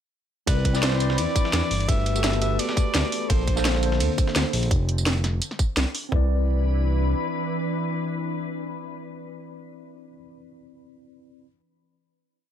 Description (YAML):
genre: liquid drum and bass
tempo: 170 BPM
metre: 4/4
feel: swing 54% on 16ths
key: C lydian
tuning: A4 = 441 Hz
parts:
  - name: bright alto saxophone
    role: melody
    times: 0.5-3.7 s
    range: B4 to E5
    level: -31 LUFS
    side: equal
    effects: tape echo
  - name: mellow tine electric piano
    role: accompaniment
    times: 0.5-11.5 s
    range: A3 to D5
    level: -30 LUFS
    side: equal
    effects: medium stereo tremolo, vintage 12-bit sampler grit
  - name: glassy FM pad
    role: sustained chords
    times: 0.8-9.7 s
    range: D3 to B5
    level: -31 LUFS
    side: left 1 dB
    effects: ensemble chorus, built-in reverb, sidechain pumping
  - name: smooth synth bass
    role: bass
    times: 0.5-7.1 s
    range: F1 to E2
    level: -23 LUFS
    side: equal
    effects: none
  - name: drum and bass drum kit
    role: drums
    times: 0.5-6.2 s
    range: kick drum, toms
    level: -23 LUFS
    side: equal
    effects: none
  - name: drum and bass drum kit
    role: drums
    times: 0.5-6.0 s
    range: hi-hat, snare drum, tambourine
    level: -27 LUFS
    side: right 1 dB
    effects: none
  - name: dusty soul sampler-style drum kit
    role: drums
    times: 0.5-4.7 s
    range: hi-hat, ride cymbal, snare drum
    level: -32 LUFS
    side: right 1 dB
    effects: high-pass filter on cymbals, high-pass filter on snare, high-pass filter on hats
room: digital ambience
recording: none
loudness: -21 LUFS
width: side -10 dB against mid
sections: 0.5-6.1 drop; 6.1-8.9 final chord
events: drop 0.5-6.1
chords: 0.5 Cmaj9; 1.7 Gmaj9; 3.3 Bbmaj9; 4.7 F5; 6.1 Cmaj9